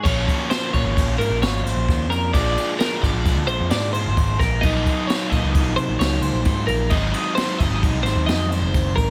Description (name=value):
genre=math rock and midwest emo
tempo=131 BPM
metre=5/4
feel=straight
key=unclear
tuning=A4 = 441 Hz
part: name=twelve-string electric guitar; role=arpeggios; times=0.0-9.1 s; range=Bb4 to Eb5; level=-27 LUFS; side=equal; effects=subtle chorus
part: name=raw garage guitar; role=riff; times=0.0-9.1 s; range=Ab2 to Eb4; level=-27 LUFS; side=equal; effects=overdrive
part: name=picked electric bass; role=bass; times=0.0-9.1 s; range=Gb1 to C3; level=-25 LUFS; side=equal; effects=none
part: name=jazz brush drum kit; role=drums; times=0.1-9.1 s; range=crash cymbal, kick drum, ride cymbal, snare drum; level=-26 LUFS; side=equal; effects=none
room=little or no reverb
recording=none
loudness=-20 LUFS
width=mono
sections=0.0-9.1 A section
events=none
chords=0.0 Bbm9; 2.3 Bb7; 4.6 Ebm7/Bb; 6.9 Ab7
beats=| 0.05 0.51 0.97 1.42 1.88 | 2.34 2.80 3.25 3.71 4.17 | 4.62 5.08 5.54 5.99 6.45 | 6.91 7.36 7.82 8.28 8.73